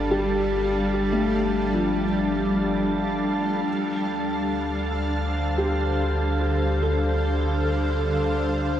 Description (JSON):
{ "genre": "ambient", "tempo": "free time", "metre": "none", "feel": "none", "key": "unclear", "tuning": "A4 = 440 Hz", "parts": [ { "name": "shimmering ambient pad", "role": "sustained chords", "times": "0.0-8.8 s", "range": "D3 to F5", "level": "-25 LUFS", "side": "equal", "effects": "chorus, built-in reverb" }, { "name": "felt-muted upright piano", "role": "arpeggios", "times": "0.0-8.8 s", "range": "F3 to A4", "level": "-28 LUFS", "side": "left 1 dB", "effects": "tape echo" }, { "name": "round analog bass", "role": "bass", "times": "0.0-8.8 s", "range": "G1 to D2", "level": "-28 LUFS", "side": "equal", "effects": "none" }, { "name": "organ-like drone", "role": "drone", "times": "0.0-8.8 s", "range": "G3 to D4", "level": "-32 LUFS", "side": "left 1 dB", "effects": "ensemble chorus, built-in reverb" }, { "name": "wind-like tuned noise texture", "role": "texture", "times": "0.0-8.8 s", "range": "A5", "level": "-34 LUFS", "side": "right 5 dB", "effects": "built-in reverb" } ], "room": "wet huge ambient reverb, RT60 9.0 s", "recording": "dark, warm production", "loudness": "-21 LUFS", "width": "side -10 dB against mid", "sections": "0.0-8.8 A section", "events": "none", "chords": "0.0 G5; 3.7 Dm7", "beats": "free time" }